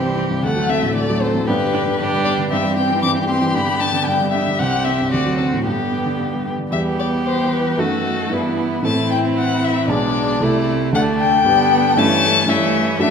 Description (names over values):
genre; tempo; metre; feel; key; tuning
quick classical-period movement for piano quintet; 115 BPM; 2/4; straight; G major, E minor from 6.7 s; A4 = 440 Hz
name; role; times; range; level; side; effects
warm violin; melody; 0.0-13.1 s; G4 to D6; -20 LUFS; left 7 dB; none
clear cello; second line; 0.0-13.1 s; B2 to G3; -27 LUFS; right 8 dB; none
rich violin; second line; 0.0-13.1 s; C#4 to A4; -24 LUFS; left 2 dB; none
clear viola; accompaniment; 0.0-13.1 s; G#3 to D4; -24 LUFS; right 5 dB; none
warm grand piano; accompaniment; 0.0-13.1 s; B1 to B4; -20 LUFS; equal; none
room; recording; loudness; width
wet recital hall reverb, RT60 1.6 s; none; -15 LUFS; side -6 dB against mid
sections
0.0-6.7 A section; 6.7-13.1 B section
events
none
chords
0.4 D7; 1.5 G; 2.5 C/G; 3.5 G; 4.6 C; 5.1 D7; 5.7 G; 6.7 Em; 7.8 D#dim/F#; 8.3 Em/G; 8.8 Am; 9.9 G#dim/B; 10.4 Am/C; 10.9 D5; 11.5 G; 12.0 A7/G